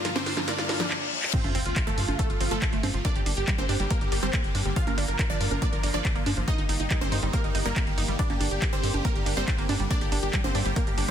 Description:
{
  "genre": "uplifting trance",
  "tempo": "140 BPM",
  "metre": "4/4",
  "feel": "straight",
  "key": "G minor",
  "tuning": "A4 = 440 Hz",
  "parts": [
    { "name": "wide unison pluck", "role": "melody", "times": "0.0-11.1 s", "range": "A3 to F5", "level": "-31 LUFS", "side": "right 1 dB", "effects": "phaser, sidechain pumping, digital delay" },
    { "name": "wide unison pluck", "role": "arpeggios", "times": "0.0-11.1 s", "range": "F3 to Eb4", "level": "-34 LUFS", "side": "right 4 dB", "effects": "sidechain pumping, digital delay" },
    { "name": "punchy analog drum machine", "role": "drums", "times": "0.0-11.1 s", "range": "congas, crash cymbal, handclaps, hi-hat, snare drum", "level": "-32 LUFS", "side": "equal", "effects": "none" },
    { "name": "riser, reverse cymbal and sub drop", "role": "sound effects", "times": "0.0-3.0 s", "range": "none", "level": "-33 LUFS", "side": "left 3 dB", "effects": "none" },
    { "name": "electronic kick drum", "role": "drums", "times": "1.3-10.8 s", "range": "none", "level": "-28 LUFS", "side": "equal", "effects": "none" },
    { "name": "tight sequencer bass", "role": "bass", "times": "1.4-11.1 s", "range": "G1 to G2", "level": "-30 LUFS", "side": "equal", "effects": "sidechain pumping" }
  ],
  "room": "light reverb, digital ambience",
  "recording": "dense, heavily limited modern master",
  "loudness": "-24 LUFS",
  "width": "side -9 dB against mid",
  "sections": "0.0-1.3 A section; 1.3-11.1 B section",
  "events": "build-up 0.0-1.3; drum fill 0.0-0.9, 0.9-1.3; riser 0.0-0.9; reverse cymbal 0.5-1.3; drop 1.3-11.1; impact 1.3-3.0",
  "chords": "0.0 Bb/G; 1.3 F/G; 3.0 Gm; 4.8 Bb/G; 6.5 Eb/G; 8.2 Gm",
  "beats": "0.05 0.48 0.91 | 1.33 1.76 2.19 2.62 | 3.05 3.48 3.91 4.33 | 4.76 5.19 5.62 6.05 | 6.48 6.91 7.33 7.76 | 8.19 8.62 9.05 9.48 | 9.91 10.33 10.76"
}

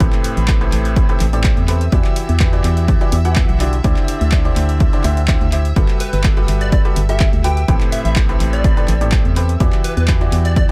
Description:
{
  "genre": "piano house",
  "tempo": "125 BPM",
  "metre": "4/4",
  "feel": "swing 53% on 16ths",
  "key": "unclear",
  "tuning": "A4 = 443 Hz",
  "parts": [
    { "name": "dark studio violin section", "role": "sustained chords", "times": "0.0-10.7 s", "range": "E5 to E6", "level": "-35 LUFS", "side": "equal", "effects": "vintage 12-bit sampler grit, sidechain pumping" },
    { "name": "bright upright piano", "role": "riff", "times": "0.0-10.7 s", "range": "A2 to F#5", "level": "-25 LUFS", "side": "equal", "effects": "sidechain pumping, tape echo" },
    { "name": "organ-like FM bass", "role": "bass", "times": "0.0-10.7 s", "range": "G1 to E2", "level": "-19 LUFS", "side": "equal", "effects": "sidechain pumping" },
    { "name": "electronic kick drum", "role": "drums", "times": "0.0-10.7 s", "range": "none", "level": "-18 LUFS", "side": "equal", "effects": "overdrive" },
    { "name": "punchy analog drum machine", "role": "drums", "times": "0.0-10.7 s", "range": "handclaps, hi-hat", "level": "-29 LUFS", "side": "equal", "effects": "overdrive, tape echo" },
    { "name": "plucky unison lead", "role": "melody", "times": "6.0-10.6 s", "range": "B4 to G5", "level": "-28 LUFS", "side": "equal", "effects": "tape echo" }
  ],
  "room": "little or no reverb",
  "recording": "echo-heavy mix",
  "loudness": "-15 LUFS",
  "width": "mono",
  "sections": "0.0-10.7 A section",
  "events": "none",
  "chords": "0.0 Am9; 1.9 Em9; 3.8 D9sus4; 5.8 Gmaj9; 7.7 Am9; 9.6 Em9",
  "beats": "| 0.00 0.48 0.96 1.44 | 1.92 2.40 2.88 3.36 | 3.84 4.32 4.80 5.28 | 5.76 6.24 6.72 7.20 | 7.68 8.16 8.64 9.12 | 9.60 10.08 10.56"
}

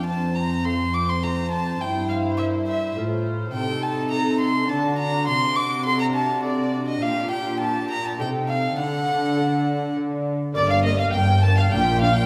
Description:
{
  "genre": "classical, baroque-style concerto movement with solo episodes",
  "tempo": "103 BPM",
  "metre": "3/4",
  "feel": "straight",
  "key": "G minor from 3.5 s",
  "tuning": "A4 = 436 Hz",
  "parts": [
    { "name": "warm chamber violin section", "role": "melody", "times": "0.0-12.3 s", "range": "F#4 to A5", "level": "-33 LUFS", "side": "equal", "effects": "none" },
    { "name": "warm violin", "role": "melody", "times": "0.0-12.3 s", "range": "D5 to D6", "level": "-28 LUFS", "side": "equal", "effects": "none" },
    { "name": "rich chamber violin section", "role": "second line", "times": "0.0-12.3 s", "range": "D5 to D6", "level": "-33 LUFS", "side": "equal", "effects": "none" },
    { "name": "dark chamber viola section", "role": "accompaniment", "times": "0.0-12.1 s", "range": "Bb3 to F4", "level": "-31 LUFS", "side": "equal", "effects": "none" },
    { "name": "lute", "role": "accompaniment", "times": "0.0-12.3 s", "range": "F2 to Bb4", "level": "-36 LUFS", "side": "equal", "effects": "none" },
    { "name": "rich studio cello section", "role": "bass", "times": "0.0-12.2 s", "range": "F2 to D3", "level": "-28 LUFS", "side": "equal", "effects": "none" },
    { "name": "rich chamber double bass section", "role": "bass", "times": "10.6-12.2 s", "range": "G1 to Bb1", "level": "-23 LUFS", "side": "equal", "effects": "none" }
  ],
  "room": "wet recital hall reverb, RT60 1.6 s",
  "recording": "heard from further back in the room",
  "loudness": "-23 LUFS",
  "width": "mono",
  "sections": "0.0-10.6 A section; 10.6-12.3 B section",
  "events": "none",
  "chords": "0.1 F; 1.8 C7/G; 3.0 F/A; 3.5 Adim/C; 4.7 D; 5.3 D7/C; 7.0 Gm/Bb; 8.2 Am7b5/C; 8.8 D; 10.6 Gm; 11.7 Gm/Bb",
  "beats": "| 0.07 0.65 1.23 | 1.80 2.38 2.96 | 3.54 4.12 4.69 | 5.27 5.85 6.43 | 7.02 7.60 8.19 | 8.78 9.37 9.97 | 10.56 11.14 11.72"
}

